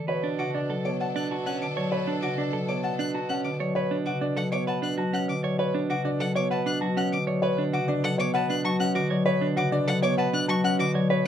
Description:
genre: classical, minimalist pattern music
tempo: 196 BPM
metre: 6/4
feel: straight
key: B minor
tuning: A4 = 440 Hz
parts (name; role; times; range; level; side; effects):
- warm concert grand piano; melody; 0.0-11.3 s; C#5 to A5; -30 LUFS; left 3 dB; none
- marimba with soft mallets; accompaniment; 0.0-11.1 s; C#3 to B3; -29 LUFS; left 2 dB; none
- clean electric guitar; arpeggios; 0.0-11.3 s; C#4 to C#5; -30 LUFS; right 7 dB; none
- clear symphonic string section; sustained chords; 0.1-3.6 s; D4 to A4; -38 LUFS; right 1 dB; none
- mellow bassoon; bass; 0.1-11.3 s; B2; -32 LUFS; right 1 dB; none
- rich violin; arpeggios; 0.4-10.9 s; F#5 to F#6; -32 LUFS; left 3 dB; none
room: little or no reverb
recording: close, detailed microphones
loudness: -24 LUFS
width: side -9 dB against mid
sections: 0.1-11.3 A section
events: none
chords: 0.1 Bm7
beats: | 0.08 0.39 0.69 1.00 1.31 1.61 | 1.92 2.23 2.53 2.84 3.14 3.45 | 3.76 4.06 4.37 4.67 4.98 5.29 | 5.59 5.90 6.21 6.51 6.82 7.12 | 7.43 7.74 8.04 8.35 8.65 8.96 | 9.27 9.57 9.88 10.19 10.49 10.80 | 11.10

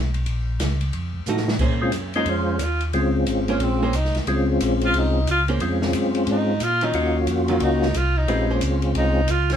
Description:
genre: soul jazz organ trio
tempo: 180 BPM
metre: 4/4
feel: swing 64% on 8ths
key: Bb minor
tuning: A4 = 440 Hz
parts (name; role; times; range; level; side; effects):
- mellow tonewheel organ; bass; 0.0-9.6 s; Ab1 to Bb2; -24 LUFS; equal; chorus vibrato, slow rotary speaker
- open jazz drum kit; drums; 0.1-9.6 s; crash cymbal, hi-hat, kick drum, ride cymbal, snare drum; -30 LUFS; equal; none
- archtop guitar, miked and amplified; accompaniment; 1.3-8.8 s; Eb3 to C5; -27 LUFS; right 3 dB; none
- percussive tonewheel organ; melody; 1.8-9.2 s; Ab3 to C5; -22 LUFS; left 2 dB; slow rotary speaker, chorus vibrato
- breathy tenor saxophone; melody; 2.2-9.6 s; C4 to F4; -24 LUFS; right 1 dB; none
room: moderate studio ambience, RT60 0.4 s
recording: band playing live in one room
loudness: -19 LUFS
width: side -9 dB against mid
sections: 0.0-1.6 A section; 1.6-9.6 B section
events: drum fill 1.3-1.6; tenor saxophone solo 1.6-9.6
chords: 0.3 Bbm; 0.9 F7b9; 1.6 Bbm9; 6.9 Ebm9; 8.3 Bbm9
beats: | 0.26 0.60 0.93 1.27 | 1.60 1.93 2.27 2.60 | 2.94 3.27 3.60 3.94 | 4.27 4.61 4.94 5.27 | 5.61 5.94 6.28 6.61 | 6.95 7.28 7.61 7.95 | 8.28 8.62 8.95 9.29

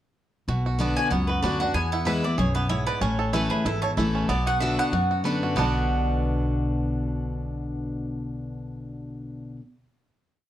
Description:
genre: bluegrass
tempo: 189 BPM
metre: 4/4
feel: swing 55% on 8ths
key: B dorian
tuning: A4 = 440 Hz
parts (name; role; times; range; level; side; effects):
- picked steel-string acoustic guitar; accompaniment; 0.5-9.6 s; E2 to F#4; -27 LUFS; left 2 dB; none
- bluegrass banjo; arpeggios; 0.5-9.6 s; B3 to B4; -30 LUFS; right 4 dB; none
- upright bass; bass; 0.5-9.6 s; G#1 to F#2; -28 LUFS; equal; none
- mandolin; melody; 1.0-9.6 s; G#4 to G#5; -29 LUFS; equal; none
room: moderate studio reverb, RT60 0.8 s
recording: none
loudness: -23 LUFS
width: side -12 dB against mid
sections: 0.5-5.6 A section; 5.6-8.1 final chord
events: none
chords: 0.5 Bm; 1.8 E; 3.0 A; 4.3 Bm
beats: | 0.48 0.80 1.12 1.44 | 1.75 2.07 2.39 2.70 | 3.02 3.34 3.66 3.98 | 4.29 4.61 4.93 5.25 | 5.56 5.88 6.20 6.52 | 6.83 7.15 7.47 7.78

